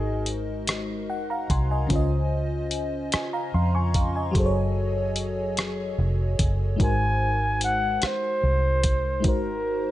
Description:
slow six-eight R&B; 49 BPM (dotted quarters); 6/8; straight; A4 = 443 Hz
warm flugelhorn; melody; 0.0-0.3, 6.8-9.9 s; Ab4 to Ab5; -26 LUFS; equal; slapback echo
FM electric piano with soft pad layer; accompaniment; 0.0-9.9 s; Db3 to Db6; -28 LUFS; left 1 dB; chorus
vintage muted fingered electric bass; bass; 0.0-9.9 s; F1 to F2; -26 LUFS; equal
dusty soul sampler-style drum kit; drums; 0.3-9.4 s; hi-hat, kick drum, rim click; -25 LUFS; equal
digital ambience; dark, warm production, nothing above 10.3 kHz; -22 LUFS; side -14 dB against mid
0.0-9.9 A section
FM electric piano fill 0.7-1.9
0.0 Ab7; 1.9 Dbmaj7; 4.3 Gbmadd9; 6.8 Ab7

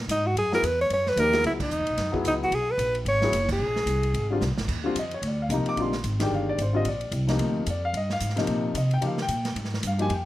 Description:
modal jazz; 222 BPM; 4/4; swing 59% on 8ths; Eb major from 4.7 s; A4 = 440 Hz
upright bass; bass; 0.0-10.3 s; Gb1 to Db3; -28 LUFS; equal
breathy alto saxophone; melody; 0.1-4.4 s; Eb4 to Db5; -24 LUFS; equal
swinging big-band drum kit; drums; 0.1-10.2 s; crash cymbal, hi-hat, kick drum, ride cymbal, snare drum; -34 LUFS; right 2 dB
warm grand piano; accompaniment; 0.5-10.3 s; C3 to D6; -28 LUFS; left 2 dB
light reverb; -23 LUFS; side -15 dB against mid
0.0-4.7 A section; 4.7-10.3 B section
band accent 1.6, 3.5; drum fill 4.4
0.4 Gb9sus4; 3.6 Bb7sus2; 4.7 Ebmaj9; 9.0 Dbadd9

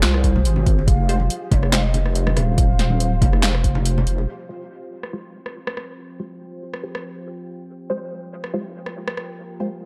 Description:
deep dubstep; 141 BPM; 4/4; swing 54% on 16ths, half-time; F minor; A4 = 442 Hz
breathy mellow low ney; melody; 0.0-3.9 s; C5 to F5; -33 LUFS; equal; dub echo
deep dark ambient pad; sustained chords; 0.0-9.9 s; F4 to G5; -38 LUFS; equal; chorus, built-in reverb
filtered dub chord stab; stabs; 0.0-9.7 s; Ab3 to C5; -33 LUFS; equal; phaser, analog chorus, dub echo
deep soft wobble bass; bass; 0.0-4.3 s; Eb1 to C2; -21 LUFS; equal; chorus
deep house drum kit; drums; 0.0-9.3 s; handclaps, hi-hat, rim click, snare drum; -27 LUFS; equal; overdrive, low-pass filter on hats, low-pass filter on snare, low-pass filter on room
electronic kick drum; drums; 0.2-3.7 s; -21 LUFS; equal; overdrive
congas and bongos; percussion; 0.4-4.3 s; -30 LUFS; equal
little or no reverb; dark, warm production; -20 LUFS; mono
0.0-4.3 A section; 4.3-9.9 B section
drop 0.0-4.3; kick drops out 3.9-4.3; filter sweep on synth stab 4.3-9.9; filter sweep on ambient pad 4.3-9.9
0.0 Fmadd9; 4.3 Fsus2

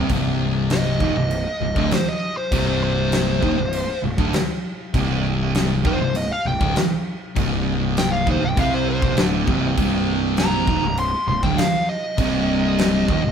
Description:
stoner and doom metal; 99 BPM; 4/4; straight; C minor; A4 = 440 Hz
thick fuzz guitar; riff; 0.0-13.3 s; C2 to C4; -25 LUFS; left 8 dB; distortion
thick fuzz guitar; riff; 0.0-13.3 s; C2 to C4; -23 LUFS; right 6 dB; distortion
fuzz picked electric bass; bass; 0.0-13.3 s; C1 to C2; -26 LUFS; equal; overdrive, tube saturation
big rock drum kit; drums; 0.1-13.2 s; crash cymbal, kick drum, snare drum; -24 LUFS; left 1 dB
fuzz lead guitar; melody; 0.7-13.3 s; C5 to C6; -24 LUFS; left 1 dB; distortion
moderate studio reverb, RT60 0.7 s; band playing live in one room; -18 LUFS; side -7 dB against mid
0.1-13.3 A section
lead electric guitar solo 0.1-13.3
0.1 Cm

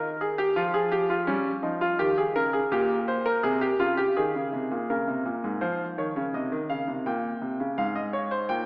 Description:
classical, baroque-style two-part invention for grand piano; 84 BPM; 4/4; straight; A4 = 440 Hz
clear grand piano; solo; 0.0-8.7 s; Ab2 to G5; -24 LUFS; equal
wet concert hall reverb, RT60 2.0 s; small speaker sound; -24 LUFS; side -27 dB against mid
0.0-4.9 A section; 4.9-8.7 B section
0.0 Ab5; 0.6 Db/F; 2.0 Eb7; 3.4 Ab/C; 4.9 Ab69; 6.3 Cm; 7.8 Fm/Ab

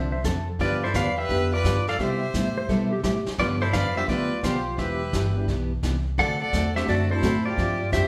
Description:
country, western swing; 172 BPM; 4/4; swing 65% on 8ths; A4 = 440 Hz
clean lap steel guitar; second line; 0.0-0.5, 2.6-3.3 s; G4 to E5; -34 LUFS; equal
picked steel-string acoustic guitar; accompaniment; 0.0-8.1 s; C3 to A4; -30 LUFS; equal
upright bass; bass; 0.0-8.1 s; E1 to C3; -30 LUFS; equal
vintage brush drum kit; drums; 0.2-8.1 s; brushed snare drum, hi-hat, kick drum, snare drum; -36 LUFS; equal
pedal steel guitar; melody; 0.6-8.1 s; E4 to F#5; -29 LUFS; equal
clear fiddle; second line; 0.6-8.1 s; G4 to D5; -35 LUFS; equal
dark upright piano; accompaniment; 4.0-8.1 s; F3 to G4; -34 LUFS; equal
wet large studio reverb, RT60 0.8 s; band playing live in one room; -25 LUFS; mono
0.0-8.1 A section
0.0 Dm7; 0.6 G7; 2.0 Cmaj7; 3.4 G7; 4.8 Em7; 6.2 D7; 7.6 G7sus4

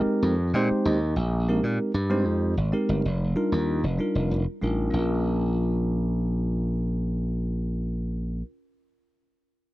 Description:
jazz; 64 BPM (dotted quarters); 6/8; straight; Bb dorian; A4 = 440 Hz
bell-like tine electric piano; accompaniment; 0.0-8.4 s; G3 to G5; -27 LUFS; equal
slap bass; bass; 0.0-8.4 s; F1 to Bb2; -25 LUFS; equal
digital ambience; dry, close 1970s-style studio recording; -23 LUFS; side -17 dB against mid
0.0-1.2 A section; 1.2-4.9 B section; 4.9-8.7 C section
tine electric piano fill 0.2-1.2
0.0 Bb13sus4; 3.0 F13sus4; 4.9 Bbm

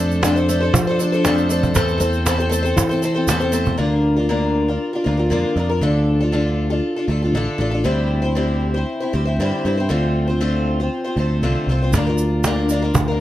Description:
acoustic folk duo or small band; 118 BPM; 4/4; straight; A4 = 440 Hz
picked twelve-string acoustic guitar; accompaniment; 0.0-13.2 s; D3 to C5; -20 LUFS; left 1 dB
picked electric bass; bass; 0.0-13.2 s; A1 to F3; -20 LUFS; equal
tube shaker; percussion; 0.1-3.7, 11.9-13.1 s; -30 LUFS; right 6 dB
cajon; percussion; 0.2-3.8, 11.9-13.1 s; -21 LUFS; right 2 dB
light reverb; lossy compression artefacts; -16 LUFS; side -14 dB against mid
0.0-3.8 A section; 3.8-11.9 B section; 11.9-13.2 B section
0.0 Dm7/F; 1.8 Am/E; 3.8 Bb/D; 5.8 Dm; 7.9 Cadd9/D; 9.9 F/D; 11.9 Bb/D

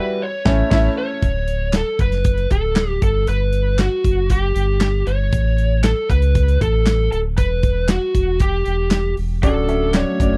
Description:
piano-driven pop; 117 BPM; 4/4; straight; D major; A4 = 441 Hz
lead guitar through a small cranked amp; melody; 0.0-10.4 s; F#4 to C#5; -24 LUFS; equal; overdrive
clear grand piano; accompaniment; 0.0-1.2, 9.4-10.4 s; D3 to E5; -24 LUFS; equal
dark studio violin section; second line; 0.5-0.9 s; C#4 to E5; -28 LUFS; equal
sub bass with octave; bass; 0.5-10.4 s; D1 to C#2; -21 LUFS; equal
modern studio drum kit; drums; 0.5-10.3 s; crash cymbal, handclaps, hi-hat, kick drum, snare drum; -22 LUFS; equal
warm analog pad; sustained chords; 9.4-10.4 s; D3 to F#4; -29 LUFS; equal; chorus
little or no reverb; dry, close 1970s-style studio recording; -18 LUFS; mono
0.0-1.2 A section; 1.2-10.4 B section
band accent 0.0-1.2
0.2 A; 1.2 Dmaj7; 3.0 Gmaj7; 5.3 A; 7.4 Emadd9; 9.4 Dmaj7

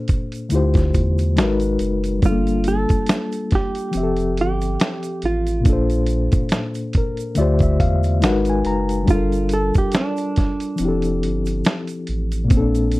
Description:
lo-fi hip hop; 70 BPM; 4/4; swing 57% on 16ths; A4 = 436 Hz
reed electric piano; accompaniment; 0.0-13.0 s; Bb2 to A#5; -21 LUFS; left 2 dB; fast tremolo, cassette tape, low-pass filter
dusty soul sampler-style drum kit; drums; 0.1-13.0 s; hi-hat, kick drum, snare drum; -19 LUFS; equal
tube shaker; percussion; 0.1-13.0 s; -43 LUFS; right 10 dB
sub bass with octave; bass; 0.5-13.0 s; F1 to E2; -21 LUFS; equal
hollow-body jazz guitar; melody; 2.3-13.0 s; D4 to A4; -25 LUFS; right 3 dB; low-pass filter
light reverb; dark, warm production; -17 LUFS; side -19 dB against mid
0.0-13.0 A section
reed electric piano fill 6.5-9.1
0.0 Bbmaj7; 0.5 Dm11; 1.4 G#m9; 2.2 Gm9; 3.9 Fmaj9; 5.7 Bbmaj7; 7.4 Dm11; 8.2 G#m9; 9.1 Gm9; 10.8 Fmaj9

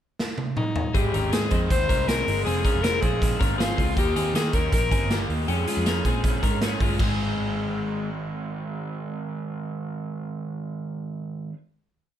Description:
jangly indie pop; 159 BPM; 4/4; straight; Ab major; A4 = 441 Hz
raw garage drum kit; drums; 0.2-7.1 s; crash cymbal, hi-hat, kick drum, snare drum, toms; -25 LUFS; right 1 dB
bright alto saxophone; melody; 0.6-6.6 s; Eb4 to C5; -27 LUFS; left 3 dB; plate reverb, tape echo
raw garage guitar; accompaniment; 0.9-11.6 s; Ab2 to Ab4; -31 LUFS; right 4 dB; overdrive
twelve-string electric guitar; arpeggios; 0.9-8.1 s; Ab3 to C5; -30 LUFS; left 6 dB; spring reverb, tape echo
vintage muted picked electric bass; bass; 0.9-11.5 s; F1 to Eb3; -28 LUFS; right 1 dB
light reverb; -22 LUFS; side -10 dB against mid
0.0-0.9 pickup bar; 0.9-7.0 verse; 7.0-10.0 final chord
drum fill 0.2-0.9
0.0 N.C.; 0.9 Ab; 2.5 Fm; 4.0 Eb; 5.5 Db/F; 7.0 Ab

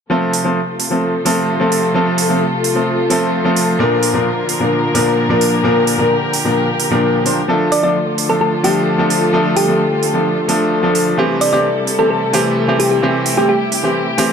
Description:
EDM, festival progressive house; 130 BPM; 4/4; straight; F major; A4 = 444 Hz
clear concert grand piano; accompaniment; 0.1-14.3 s; Bb2 to C5; -15 LUFS; equal; ping-pong delay
muted chamber string section; sustained chords; 0.1-14.3 s; C3 to Bb4; -18 LUFS; left 2 dB; low-pass filter
electronic hi-hat; drums; 0.3-14.3 s; -21 LUFS; right 5 dB; overdrive
thumb-piano-like synth pluck; melody; 7.7-13.6 s; G4 to D5; -18 LUFS; equal; chorus, ping-pong delay
light reverb, small room reverb; dark, warm production; -13 LUFS; side -7 dB against mid
0.1-14.3 A section
0.1 F; 3.8 Bb; 7.5 Dm; 11.2 C6

